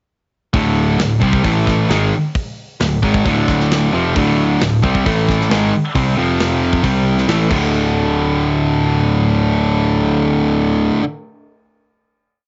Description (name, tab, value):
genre	hard rock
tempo	134 BPM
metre	4/4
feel	straight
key	D minor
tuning	A4 = 440 Hz
part	high-gain distorted guitar	riff	0.5-11.0 s	D2 to C4	-20 LUFS	equal	distortion
part	overdriven semi-hollow guitar	riff	0.5-11.0 s	D2 to C4	-19 LUFS	equal	spring reverb
part	modern bright picked electric bass	bass	0.5-10.9 s	D1 to C2	-24 LUFS	equal	none
part	tight metal drum kit	drums	0.5-7.6 s	crash cymbal, hi-hat, kick drum, snare drum	-24 LUFS	equal	cassette tape
room	light reverb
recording	home recording on cassette, nothing above 7.8 kHz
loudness	-16 LUFS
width	mono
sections	0.5-7.7 riff; 7.7-11.3 final hit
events	none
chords	0.5 D5; 1.4 A5; 1.9 Dm; 5.1 A5; 5.5 G#maj7; 6.2 F5; 6.8 C5; 7.3 A5; 7.5 D5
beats	| 0.54 0.99 1.45 1.90 | 2.35 2.80 3.25 3.71 | 4.16 4.60 5.05 5.50 | 5.95 6.39 6.84 7.28 | 7.72 8.17 8.61 9.06 | 9.50 9.95 10.39 10.84